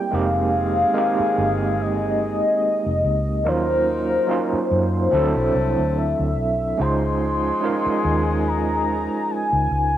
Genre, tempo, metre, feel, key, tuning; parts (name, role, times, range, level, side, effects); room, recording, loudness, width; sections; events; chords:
R&B; 72 BPM; 4/4; swing 56% on 16ths; A4 = 441 Hz
warm velvety synth lead; melody; 0.0-10.0 s; C5 to C6; -22 LUFS; left 1 dB; chorus, slapback echo
overdriven tine electric piano; accompaniment; 0.0-10.0 s; F3 to C5; -23 LUFS; right 4 dB; medium tremolo
mellow horn section; stabs; 0.1-9.7 s; Eb3 to Bb4; -29 LUFS; left 7 dB; slapback echo
vintage muted fingered electric bass; bass; 0.1-10.0 s; F1 to Gb2; -24 LUFS; left 1 dB
little or no reverb; recorded outdoors, with no room sound; -18 LUFS; side -11 dB against mid
0.0-10.0 A section
0.1 Fm11; 3.4 Ebm7; 5.1 D9; 6.8 Dbmaj9